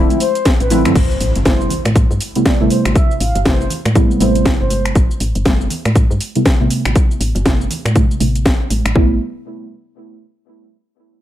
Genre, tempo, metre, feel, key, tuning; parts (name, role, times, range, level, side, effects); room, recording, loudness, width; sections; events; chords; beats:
deep house; 120 BPM; 4/4; swing 60% on 16ths; A minor; A4 = 440 Hz
deep mellow chord stab; stabs; 0.0-9.2 s; C3 to E4; -19 LUFS; right 1 dB; chorus, sidechain pumping, tape echo
woody FM bass; bass; 0.0-9.2 s; G1 to A2; -18 LUFS; equal; sidechain pumping
house drum kit; drums; 0.1-8.9 s; crash cymbal, finger snaps, hi-hat, shaker, snare drum; -20 LUFS; equal; overdrive
congas and bongos; percussion; 0.1-8.8 s; -27 LUFS; right 4 dB
mellow horn-like synth lead; melody; 0.2-4.9 s; B4 to F5; -23 LUFS; equal; phaser, wide subtle chorus, digital delay
electronic kick drum; drums; 0.5-9.1 s; -14 LUFS; equal; overdrive
impact; sound effects; 1.0-3.0 s; -25 LUFS; left 1 dB
digital ambience; -12 LUFS; side -12 dB against mid
1.0-9.0 A section; 9.0-11.0 B section
impact 1.0-3.0; filter sweep on FM bass 1.0-9.0; filter sweep on synth stab 1.0-9.0
0.0 Dm9; 1.0 Am9
0.46 | 0.95 1.46 1.96 2.46 | 2.96 3.46 3.96 4.46 | 4.96 5.46 5.96 6.46 | 6.96 7.46 7.96 8.46 | 8.96